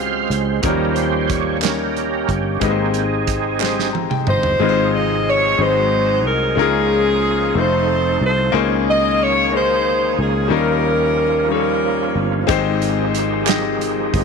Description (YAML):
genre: slow gospel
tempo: 61 BPM (dotted quarters)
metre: 6/8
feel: straight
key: Ab major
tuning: A4 = 439 Hz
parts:
  - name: clear baby grand piano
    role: accompaniment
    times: 0.0-14.2 s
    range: Ab2 to Bb5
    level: -21 LUFS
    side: left 14 dB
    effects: none
  - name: overdriven tonewheel organ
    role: sustained chords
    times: 0.0-14.2 s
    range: C3 to F5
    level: -23 LUFS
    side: right 12 dB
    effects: slow rotary speaker, chorus vibrato
  - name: fingered electric bass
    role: bass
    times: 0.0-14.2 s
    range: F1 to Eb2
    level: -22 LUFS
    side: equal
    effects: none
  - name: modern studio drum kit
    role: drums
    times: 0.3-4.6, 12.5-14.2 s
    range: hi-hat, kick drum, snare drum, toms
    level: -23 LUFS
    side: right 4 dB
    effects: none
  - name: group handclap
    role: percussion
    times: 1.6-3.9, 13.5-13.8 s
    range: none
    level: -26 LUFS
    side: right 15 dB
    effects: none
  - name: clear saxophone section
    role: melody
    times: 4.3-12.5 s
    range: Db4 to Eb5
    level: -18 LUFS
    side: right 1 dB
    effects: none
room: light reverb, small room reverb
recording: 1960s-style stereo with parts hard left and right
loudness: -15 LUFS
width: side -5 dB against mid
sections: 0.0-4.6 A section; 4.6-14.2 B section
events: tonewheel organ solo 0.0-4.6; drum fill 3.6-4.6; grand piano fill 3.6-4.6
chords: 0.0 Dbmaj7; 0.6 Eb7; 2.6 Abmaj7; 4.6 Ab6; 5.6 Ab7; 6.6 Db69; 7.6 F7; 8.5 Bbm11/Db; 10.5 Eb9; 12.5 Abmaj7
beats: | 0.64 1.63 | 2.62 3.60 | 4.59 5.58 | 6.57 7.56 | 8.54 9.53 | 10.52 11.50 | 12.49 13.47